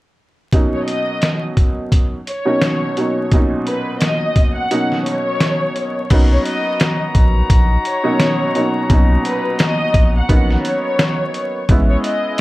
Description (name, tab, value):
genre	hip hop, boom-bap hip-hop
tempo	86 BPM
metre	4/4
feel	swing 60% on 16ths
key	B major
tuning	A4 = 441 Hz
part	warm upright piano	accompaniment	0.5-12.4 s	A#2 to E4	-20 LUFS	right 1 dB	cassette tape, high-pass filter, low-pass filter
part	trip hop sampler-style drum kit	drums	0.5-12.4 s	crash cymbal, hi-hat, kick drum, snare drum	-16 LUFS	equal	none
part	warm studio violin section	melody	0.7-12.4 s	B4 to F#5	-21 LUFS	left 1 dB	high-pass filter, low-pass filter, slapback echo
part	warm horn section	stabs	6.1-12.4 s	C#4 to A#5	-24 LUFS	left 2 dB	high-pass filter, low-pass filter, slapback echo
part	warm sub bass	bass	6.1-12.0 s	A1 to B1	-15 LUFS	equal	none
room	light reverb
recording	vinyl crackle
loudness	-14 LUFS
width	side -18 dB against mid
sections	0.5-6.1 A section; 6.1-12.4 B section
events	kick muted 4.7-6.1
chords	0.5 Bmaj9; 11.7 Amaj9